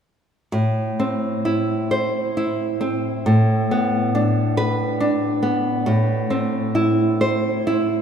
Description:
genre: classical.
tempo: 42-47 BPM (dotted quarters).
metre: 6/8.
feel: rubato.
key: A minor.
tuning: A4 = 440 Hz.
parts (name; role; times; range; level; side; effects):
nylon-string guitar; accompaniment; 0.5-8.0 s; A2 to C5; -18 LUFS; equal; none.
room: wet cathedral reverb, RT60 6.3 s.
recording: recorded in a church or concert hall.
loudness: -18 LUFS.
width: side -7 dB against mid.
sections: 0.5-8.0 A section.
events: none.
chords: 0.5 Am; 3.3 Asus24; 5.9 Am.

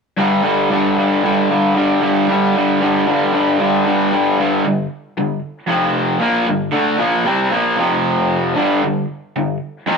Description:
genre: rock.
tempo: 114 BPM.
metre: 4/4.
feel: straight.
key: unclear.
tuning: A4 = 441 Hz.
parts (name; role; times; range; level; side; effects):
raw garage guitar; solo; 0.2-10.0 s; F2 to D4; -14 LUFS; equal; overdrive.
room: light reverb.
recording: rough rehearsal-room recording.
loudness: -14 LUFS.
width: side -5 dB against mid.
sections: 0.2-4.4 A section; 4.4-10.0 B section.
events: none.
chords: 0.2 G5; 5.7 F5; 6.2 G5; 7.8 F5; 8.6 G5.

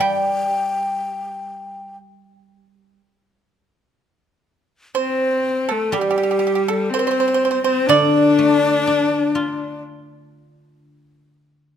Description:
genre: chinese traditional, Chinese chamber ensemble.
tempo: 61 BPM.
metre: 4/4.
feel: rubato.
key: G shang mode.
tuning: A4 = 440 Hz.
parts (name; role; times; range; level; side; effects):
breathy mellow low xiao; melody; 0.0-9.8 s; G4 to G5; -21 LUFS; left 1 dB; none.
pipa; second line; 0.0-9.8 s; G4 to G5; -21 LUFS; right 8 dB; none.
guzheng; accompaniment; 0.0-11.3 s; D3 to F4; -21 LUFS; left 3 dB; none.
bright horsehead fiddle; second line; 5.0-9.8 s; G3 to D4; -22 LUFS; left 4 dB; none.
room: light reverb.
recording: close, detailed microphones.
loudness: -16 LUFS.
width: side -8 dB against mid.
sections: 0.0-4.0 A section; 4.0-11.8 B section.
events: none.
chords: none.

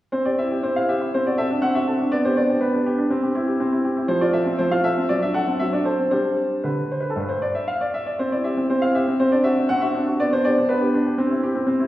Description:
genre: classical-period piano sonatina.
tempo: 120 BPM.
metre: 4/4.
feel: rubato.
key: C major.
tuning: A4 = 441 Hz.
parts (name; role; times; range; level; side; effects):
bright baby grand piano; solo; 0.1-11.9 s; G2 to F#5; -19 LUFS; equal; none.
room: wet recital hall reverb, RT60 1.6 s.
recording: heard from further back in the room.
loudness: -19 LUFS.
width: side -14 dB against mid.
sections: 0.1-11.9 A section.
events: none.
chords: 0.1 C; 1.1 D7/C; 2.1 G/B; 3.1 C; 4.1 F; 5.1 D7/F#; 6.1 G5; 8.2 C; 9.2 D7/C; 10.2 G/B; 11.2 C.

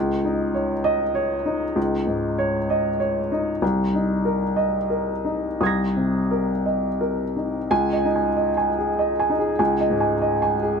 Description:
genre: neoclassical minimalist piano.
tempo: 83-101 BPM.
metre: 3/4.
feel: rubato.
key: unclear.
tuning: A4 = 439 Hz.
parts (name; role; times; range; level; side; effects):
warm upright piano; solo; 0.0-10.8 s; C2 to Bb6; -20 LUFS; equal; none.
room: light reverb.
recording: close, detailed microphones.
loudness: -20 LUFS.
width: side -6 dB against mid.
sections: 0.0-7.7 A section; 7.7-10.8 A section.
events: none.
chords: 0.0 Dbsus2; 3.6 Abadd9/C; 7.7 Dbsus2.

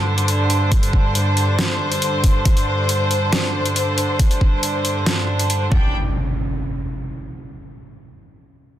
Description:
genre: heavy wobble dubstep.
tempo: 138 BPM.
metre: 4/4.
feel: half-time.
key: unclear.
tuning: A4 = 440 Hz.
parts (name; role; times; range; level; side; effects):
rich chamber string section; sustained chords; 0.0-5.9 s; G2 to G5; -19 LUFS; equal; sidechain pumping.
dubstep drum kit; drums; 0.2-5.6 s; hi-hat, snare drum; -23 LUFS; equal; overdrive, studio reverb.
electronic kick drum; drums; 0.7-5.8 s; none; -16 LUFS; equal; overdrive, studio reverb.
impact; sound effects; 5.7-7.5 s; none; -25 LUFS; equal; none.
room: light reverb.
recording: dense, heavily limited modern master.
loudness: -16 LUFS.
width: side -12 dB against mid.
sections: 0.0-5.9 A section; 5.9-7.7 B section.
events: none.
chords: 0.0 G5; 5.9 N.C..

